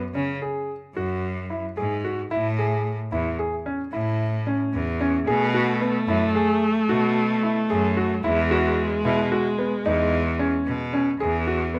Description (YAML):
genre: contemporary instrumental, chamber music in an uneven meter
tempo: 223 BPM (eighths)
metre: 11/8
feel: straight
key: E major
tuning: A4 = 440 Hz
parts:
  - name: clear concert grand piano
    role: arpeggios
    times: 0.1-11.8 s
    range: B3 to G#4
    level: -28 LUFS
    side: equal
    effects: none
  - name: bright cello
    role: bass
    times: 0.1-11.8 s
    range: E2 to C#3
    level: -28 LUFS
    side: equal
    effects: none
  - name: clear viola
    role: second line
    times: 5.3-10.9 s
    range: G#3 to A3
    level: -26 LUFS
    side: equal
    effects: none
room: light reverb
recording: close, detailed microphones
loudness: -24 LUFS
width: mono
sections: 0.0-11.2 A section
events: none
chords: 0.0 F#5; 2.3 Amaj7; 5.3 B7(no3); 8.2 Eadd9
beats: 0.14 0.41 0.68 0.95 1.22 1.50 1.76 2.04 | 2.31 2.58 2.85 3.12 3.38 3.65 3.92 4.19 4.46 4.73 5.00 | 5.27 5.54 5.81 6.08 6.35 6.62 6.89 7.16 7.43 7.70 7.96 | 8.23 8.50 8.77 9.04 9.31 9.58 9.85 10.12 10.39 10.66 10.93 | 11.20 11.47 11.73